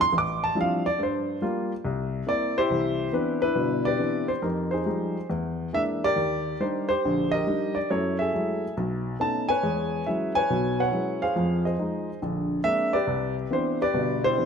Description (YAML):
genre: solo jazz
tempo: 139 BPM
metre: 4/4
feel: swing 66% on 8ths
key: unclear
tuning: A4 = 439 Hz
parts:
  - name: warm upright piano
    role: solo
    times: 0.0-14.5 s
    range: G1 to D6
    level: -23 LUFS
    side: equal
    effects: none
room: moderate recital hall reverb, RT60 1.7 s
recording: close, detailed microphones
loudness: -24 LUFS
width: side -6 dB against mid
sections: 0.0-2.7 A section; 2.7-14.5 B section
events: upright piano solo 0.0-2.7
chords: 0.0 Dm11; 1.0 Gm7; 1.8 C7; 2.7 Cmaj9; 4.4 Fm9; 5.3 E7#11; 6.2 Ebmaj7; 7.9 F#m9; 8.8 B9; 9.6 E69; 11.4 Fm7; 12.2 Bb9; 13.1 Cmaj9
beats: 0.12 0.55 | 0.98 1.41 1.84 2.27 | 2.70 3.13 3.57 4.00 | 4.43 4.87 5.30 5.73 | 6.17 6.60 7.03 7.46 | 7.90 8.33 8.76 9.19 | 9.62 10.06 10.49 10.92 | 11.35 11.78 12.21 12.64 | 13.07 13.51 13.94 14.37